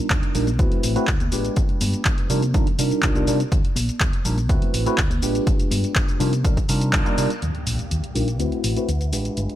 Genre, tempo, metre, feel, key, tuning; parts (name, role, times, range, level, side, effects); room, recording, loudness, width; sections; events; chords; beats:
filtered disco house; 123 BPM; 4/4; straight; A4 = 440 Hz
tine electric piano; accompaniment; 0.0-9.6 s; G3 to B4; -25 LUFS; equal; phaser, vintage 12-bit sampler grit, sidechain pumping, low-pass filter
hollow-body short-scale fingered electric bass; bass; 0.1-9.5 s; G1 to C3; -24 LUFS; equal; tube saturation, sidechain pumping, low-pass filter
electronic kick drum; drums; 0.1-7.0 s; -21 LUFS; equal
punchy analog drum machine; drums; 0.1-9.6 s; handclaps, hi-hat, shaker; -27 LUFS; equal; sidechain pumping on hats, sidechain pumping on perc
tambourine and congas; percussion; 0.1-7.4 s; -33 LUFS; left 1 dB; sidechain pumping on perc, low-pass filter on perc
rich studio violin section; sustained chords; 7.4-9.6 s; Ab3 to D6; -39 LUFS; equal; sidechain pumping, low-pass filter
impact; sound effects; 7.4-9.4 s; -32 LUFS; equal
digital ambience; -19 LUFS; side -12 dB against mid
0.0-7.4 A section; 7.4-9.6 B section
filter sweep 0.0-7.4, 7.4-9.6; band accent 6.9; impact 7.4-9.4
0.0 Ebmaj9; 0.6 D13; 1.6 G7b9; 2.3 Cm11; 3.5 Ebmaj7; 4.5 D13; 5.5 G7b9; 6.2 Cm11; 7.4 Ebmaj9; 8.4 D13
0.11 0.59 1.08 | 1.57 2.06 2.54 3.03 | 3.52 4.01 4.50 4.98 | 5.47 5.96 6.45 6.93 | 7.42 7.91 8.40 8.89 | 9.37